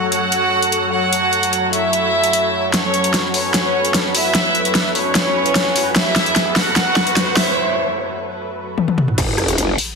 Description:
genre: heavy wobble dubstep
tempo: 149 BPM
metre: 4/4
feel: half-time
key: F# minor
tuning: A4 = 440 Hz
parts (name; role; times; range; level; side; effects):
- rich chamber violin section; melody; 0.0-7.6 s; C#4 to F#5; -18 LUFS; right 1 dB; ping-pong delay
- lush unison pad; sustained chords; 0.0-9.1 s; F#3 to C#5; -23 LUFS; left 1 dB; chorus, phaser, sidechain pumping
- dubstep drum kit; drums; 0.1-9.9 s; crash cymbal, hi-hat, rim click, snare drum, toms; -18 LUFS; left 1 dB; none
- riser and sub drop; sound effects; 3.9-10.0 s; none; -26 LUFS; right 1 dB; none
- growl bass; bass; 9.2-9.8 s; F#1; -18 LUFS; equal; chorus, overdrive
- electronic kick drum; drums; 9.2-9.3 s; none; -23 LUFS; equal; distortion
room: wet lush hall reverb, RT60 2.1 s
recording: dense, heavily limited modern master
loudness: -14 LUFS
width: side -4 dB against mid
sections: 0.0-9.2 A section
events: build-up 0.0-9.2; drum fill 2.7-7.6, 8.8-9.2; riser 3.9-7.6; break 7.6-9.2; impact 9.2-10.0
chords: 0.0 F#m; 9.2 N.C.

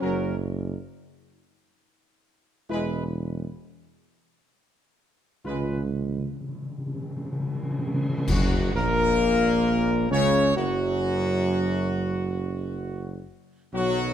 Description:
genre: classical, ceremonial fanfare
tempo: 66 BPM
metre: 3/4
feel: straight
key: F# major from 8.3 s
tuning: A4 = 440 Hz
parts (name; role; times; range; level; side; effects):
- bright trumpet section; melody; 0.0-14.1 s; F#4 to C#5; -28 LUFS; equal; none
- bright trombone section; sustained chords; 0.0-14.1 s; F#2 to B3; -32 LUFS; right 4 dB; none
- mellow French horn section; sustained chords; 0.0-14.1 s; F#3 to E#4; -27 LUFS; left 4 dB; none
- mellow tuba; bass; 0.0-14.1 s; E1 to C#2; -28 LUFS; right 4 dB; none
- timpani; percussion; 5.4-8.2 s; C#3; -30 LUFS; left 1 dB; none
- cymbal swell, clash cymbals and concert bass drum; percussion; 5.5-10.1 s; none; -30 LUFS; left 1 dB; none
room: light reverb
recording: close, detailed microphones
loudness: -23 LUFS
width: side -10 dB against mid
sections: 0.0-8.3 A section; 8.3-14.1 B section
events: timpani fill 5.5-8.3; band accent 8.3-9.2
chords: 0.0 F#5; 2.7 E; 5.5 C#; 8.3 F#

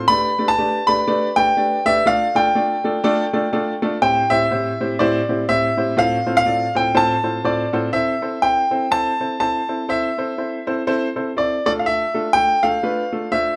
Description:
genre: soul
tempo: 122 BPM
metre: 4/4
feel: swing 59% on 8ths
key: A minor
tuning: A4 = 443 Hz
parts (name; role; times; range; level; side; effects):
- clear grand piano; melody; 0.0-13.6 s; D5 to C6; -20 LUFS; equal; none
- warm upright piano; accompaniment; 0.0-13.5 s; A2 to D5; -24 LUFS; equal; none
room: moderate large studio reverb, RT60 0.9 s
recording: band playing live in one room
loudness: -19 LUFS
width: mono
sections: 0.0-7.9 A section; 7.9-13.6 B section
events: none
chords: 0.1 G/A; 2.1 Dm/A; 4.0 C/A; 6.0 F/A; 7.9 Am; 11.6 Dm

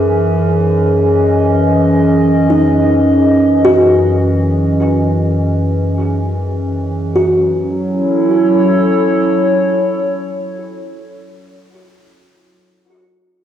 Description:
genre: ambient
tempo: free time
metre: none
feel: none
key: F# dorian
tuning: A4 = 440 Hz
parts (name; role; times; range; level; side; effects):
- warbly tape-like pad; sustained chords; 0.0-11.3 s; F#2 to D#5; -12 LUFS; equal; chorus, built-in reverb
- kalimba; arpeggios; 2.5-10.6 s; D#4 to F#4; -16 LUFS; equal; diffuse ambient delay
room: wet concert hall reverb, RT60 2.4 s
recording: worn, warbling old tape, cassette tape, warbly pitch drift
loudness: -11 LUFS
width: side -10 dB against mid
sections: 0.0-7.2 A section; 7.2-11.7 B section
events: none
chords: 0.0 C#madd9/F#; 7.2 F#m7

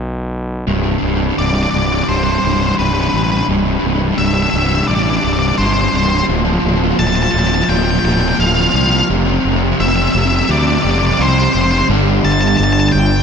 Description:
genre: post-rock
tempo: 86 BPM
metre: 4/4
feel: straight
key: C major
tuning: A4 = 441 Hz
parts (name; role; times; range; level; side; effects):
- fuzz fingered electric bass; bass; 0.0-13.2 s; C1 to D2; -17 LUFS; equal; overdrive
- crunchy overdriven guitar; riff; 0.7-13.2 s; C2 to G3; -16 LUFS; equal; slapback echo
- octave-fuzz lead guitar; melody; 1.4-13.2 s; B4 to A5; -17 LUFS; left 1 dB; distortion, tape echo
room: light reverb, digital ambience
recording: none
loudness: -12 LUFS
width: side -6 dB against mid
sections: 0.7-11.9 A section; 11.9-13.2 B section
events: build-up 0.7-11.9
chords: 0.0 N.C.; 0.7 C5; 6.3 Bbmaj7/D; 9.1 F5; 11.9 G5

